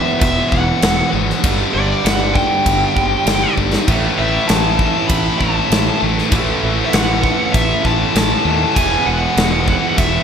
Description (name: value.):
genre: hard rock.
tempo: 98 BPM.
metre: 4/4.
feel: straight.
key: A mixolydian.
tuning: A4 = 440 Hz.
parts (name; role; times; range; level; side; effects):
high-gain lead guitar; melody; 0.0-10.2 s; D5 to B5; -19 LUFS; left 1 dB; distortion, digital delay.
cranked stack guitar; riff; 0.0-10.2 s; E2 to A3; -21 LUFS; right 8 dB; overdrive.
scooped high-gain guitar; riff; 0.0-10.2 s; E2 to A3; -21 LUFS; left 9 dB; distortion.
fuzz fingered electric bass; bass; 0.2-10.2 s; E1 to D#2; -21 LUFS; equal; overdrive.
big rock drum kit; drums; 0.2-10.1 s; crash cymbal, kick drum, snare drum; -18 LUFS; equal; none.
tight distorted guitar; riff; 3.9-10.2 s; A2 to E4; -24 LUFS; right 1 dB; distortion, slapback echo.
room: moderate concert hall reverb, RT60 1.9 s, studio ambience.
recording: big arena sound.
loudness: -13 LUFS.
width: side -7 dB against mid.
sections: 0.0-10.2 A section.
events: drum fill 3.6-3.9.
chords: 0.0 E; 1.4 G5; 3.9 A; 8.8 E.